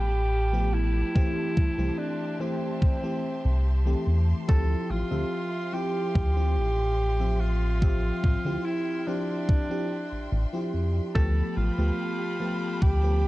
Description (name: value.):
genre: vaporwave.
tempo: 72 BPM.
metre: 4/4.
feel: straight.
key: D dorian.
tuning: A4 = 442 Hz.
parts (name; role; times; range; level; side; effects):
breathy alto saxophone; melody; 0.0-13.3 s; C4 to A4; -31 LUFS; right 1 dB; tape echo.
clear studio string section; sustained chords; 0.0-13.3 s; F3 to C6; -41 LUFS; equal; vintage 12-bit sampler grit, low-pass filter.
chorused synth bass; bass; 0.0-13.3 s; A1 to F2; -25 LUFS; equal; none.
FM electric piano with soft pad layer; accompaniment; 0.5-13.2 s; E3 to E5; -31 LUFS; left 1 dB; wide subtle chorus.
electronic kick drum; drums; 1.2-13.0 s; none; -23 LUFS; equal; none.
room: little or no reverb.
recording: dark, warm production, cassette tape.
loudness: -24 LUFS.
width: side -18 dB against mid.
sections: 0.0-13.3 A section.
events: none.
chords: 0.0 G9; 1.2 C6; 4.5 Dm11; 11.2 G9.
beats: 0.32 | 1.15 1.99 2.82 3.65 | 4.49 5.32 6.15 6.99 | 7.82 8.65 9.49 10.32 | 11.15 11.99 12.82.